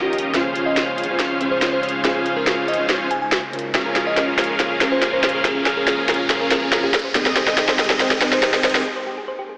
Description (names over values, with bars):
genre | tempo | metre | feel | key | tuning
future bass | 141 BPM | 4/4 | half-time | unclear | A4 = 439 Hz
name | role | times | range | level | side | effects
bell-like FM electric piano | melody | 0.0-8.7 s | G4 to Ab5 | -28 LUFS | equal | chorus, low-pass filter, tape echo
felt-muted upright piano | accompaniment | 0.0-3.8 s | Db3 to C5 | -32 LUFS | equal | tape echo
ethereal airy pad | sustained chords | 0.0-8.8 s | Bb2 to G5 | -38 LUFS | equal | ensemble chorus, built-in reverb
dense compressed supersaw | riff | 0.0-8.8 s | C4 to F5 | -24 LUFS | equal | low-pass filter
riser | sound effects | 1.3-8.9 s | none | -33 LUFS | equal | none
trap drum kit | drums | 0.1-8.8 s | hi-hat, snare drum | -23 LUFS | equal | none
thumb-piano-like synth pluck | arpeggios | 3.7-9.6 s | F4 to C5 | -31 LUFS | equal | none
room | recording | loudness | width
wet lush hall reverb, RT60 1.9 s, digital ambience | AM radio sound | -19 LUFS | mono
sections
0.0-9.6 A section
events
build-up 0.0-9.6; drum fill 0.0-8.9; filter sweep on ambient pad 0.0-9.6; break 8.9-9.6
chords
0.3 Dbmaj7; 3.7 Bbm7; 6.9 Abmaj7